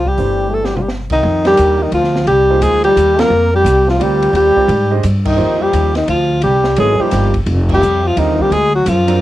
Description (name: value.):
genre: modal jazz.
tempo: 173 BPM.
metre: 3/4.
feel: swing 63% on 8ths.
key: F dorian.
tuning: A4 = 440 Hz.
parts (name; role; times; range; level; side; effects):
clear alto saxophone; melody; 0.0-9.2 s; Eb4 to Bb4; -13 LUFS; equal; cassette tape.
growling trombone; second line; 0.0-9.2 s; Eb3 to Bb3; -20 LUFS; left 7 dB; cassette tape.
upright bass; bass; 0.0-9.2 s; F1 to Ab2; -16 LUFS; equal; none.
open jazz drum kit; drums; 0.1-9.1 s; crash cymbal, hi-hat, kick drum, ride cymbal, snare drum, toms; -24 LUFS; equal; none.
warm concert grand piano; accompaniment; 0.2-9.2 s; D3 to F5; -21 LUFS; right 9 dB; cassette tape.
room: light reverb.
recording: home recording on cassette.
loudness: -11 LUFS.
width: side -15 dB against mid.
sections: 0.0-1.2 A section; 1.2-9.2 B section.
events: drum fill 0.5-0.9; band accent 3.1, 5.2, 7.6.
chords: 0.0 G7sus2; 1.2 Fm9; 7.5 Ebadd9/F; 8.5 D7alt.